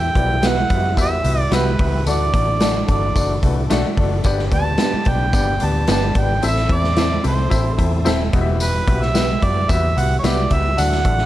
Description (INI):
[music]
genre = uptempo 1960s-style soul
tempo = 110 BPM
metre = 4/4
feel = straight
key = unclear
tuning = A4 = 440 Hz
[part]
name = mellow harmonica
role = melody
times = 0.0-11.3 s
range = B4 to A5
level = -22 LUFS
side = right 3 dB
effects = none
[part]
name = clear baby grand piano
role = accompaniment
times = 0.0-11.3 s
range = G2 to E5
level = -24 LUFS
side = left 4 dB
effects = none
[part]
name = tonewheel organ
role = sustained chords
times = 0.0-11.3 s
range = E3 to E4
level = -30 LUFS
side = left 1 dB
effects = none
[part]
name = vintage muted fingered electric bass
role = bass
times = 0.0-11.3 s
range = Eb1 to F#2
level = -20 LUFS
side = equal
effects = none
[part]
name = raw garage drum kit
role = drums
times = 0.2-11.3 s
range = hi-hat, kick drum, snare drum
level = -20 LUFS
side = equal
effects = none
[part]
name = electric guitar through a small old amp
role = stabs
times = 0.4-10.3 s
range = G3 to C5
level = -26 LUFS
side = right 5 dB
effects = tube saturation
[part]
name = tambourine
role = percussion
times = 0.4-10.9 s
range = none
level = -32 LUFS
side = left 3 dB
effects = none
[sound]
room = studio ambience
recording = dark, warm production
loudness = -15 LUFS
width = side -14 dB against mid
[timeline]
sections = 0.0-11.3 A section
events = none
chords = 0.0 Emadd9; 2.1 D; 4.2 G; 6.4 Am; 8.3 Emadd9